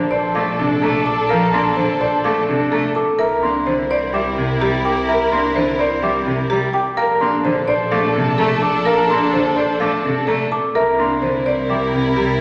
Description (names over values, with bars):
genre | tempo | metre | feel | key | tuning
classical, minimalist pattern music | 127 BPM | 4/4 | straight | Bb lydian | A4 = 440 Hz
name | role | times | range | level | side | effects
buzzing marimba with medium hard mallets | melody | 0.0-12.4 s | G4 to A5 | -25 LUFS | equal | none
rich cello | accompaniment | 0.0-12.3 s | C3 to Bb3 | -26 LUFS | equal | none
rich chamber string section | sustained chords | 0.0-12.4 s | D4 to Bb4 | -25 LUFS | equal | none
rich studio double bass section | bass | 0.0-12.4 s | Bb1 to C2 | -28 LUFS | equal | none
celesta | arpeggios | 0.1-12.4 s | E5 to D6 | -27 LUFS | equal | none
warm grand piano | arpeggios | 0.1-12.0 s | D4 to C5 | -24 LUFS | equal | none
room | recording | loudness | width
wet recital hall reverb, RT60 1.5 s | none | -18 LUFS | mono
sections
0.0-12.4 A section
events
none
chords
0.0 Bbmaj7; 3.2 C7; 7.0 Bbmaj7; 10.7 C7